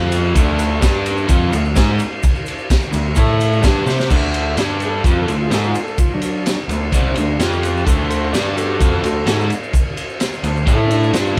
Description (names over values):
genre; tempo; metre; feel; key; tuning
garage rock duo or trio; 128 BPM; 4/4; straight; unclear; A4 = 441 Hz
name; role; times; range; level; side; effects
crunchy overdriven guitar; riff; 0.0-11.4 s; C3 to C5; -22 LUFS; equal; none
growling picked electric bass; bass; 0.0-11.4 s; C2 to C3; -23 LUFS; equal; overdrive
crunchy breakbeat drum kit; drums; 0.1-11.4 s; crash cymbal, kick drum, ride cymbal, snare drum; -20 LUFS; equal; none
tube shaker; percussion; 0.1-11.3 s; none; -39 LUFS; equal; none
overdriven combo organ; melody; 4.9-11.4 s; F#3 to D5; -25 LUFS; equal; none
room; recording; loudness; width
light reverb; band playing live in one room; -17 LUFS; mono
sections
0.0-4.1 A section; 4.1-11.4 B section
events
drum fill 3.9; transistor combo organ solo 4.1-11.4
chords
0.3 D5; 0.8 G5; 1.3 D5; 3.2 A5; 3.6 Gsus4; 4.1 D5; 4.6 G5; 5.0 D5; 7.4 F5; 7.9 D5; 8.3 G5; 8.8 D; 10.7 A5